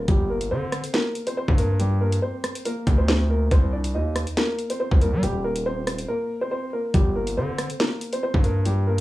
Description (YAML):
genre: hip hop, drill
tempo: 140 BPM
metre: 4/4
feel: half-time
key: G minor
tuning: A4 = 439 Hz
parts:
  - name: dark grand piano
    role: melody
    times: 0.0-9.0 s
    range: G3 to Eb5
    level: -26 LUFS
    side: equal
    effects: low-pass filter, cassette tape, tape echo
  - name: distorted 808-style bass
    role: bass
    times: 0.0-9.0 s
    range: Eb1 to G3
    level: -23 LUFS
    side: equal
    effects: distortion
  - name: drill drum kit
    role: drums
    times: 0.1-9.0 s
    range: hi-hat, kick drum, rim click, snare drum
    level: -22 LUFS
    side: equal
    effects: cassette tape
room: little or no reverb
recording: home recording on cassette, small room reverb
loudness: -21 LUFS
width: side -17 dB against mid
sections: 0.0-9.0 A section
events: break 6.1-6.9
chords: 0.1 Gm; 3.5 Cm; 5.2 Eb; 6.9 Gm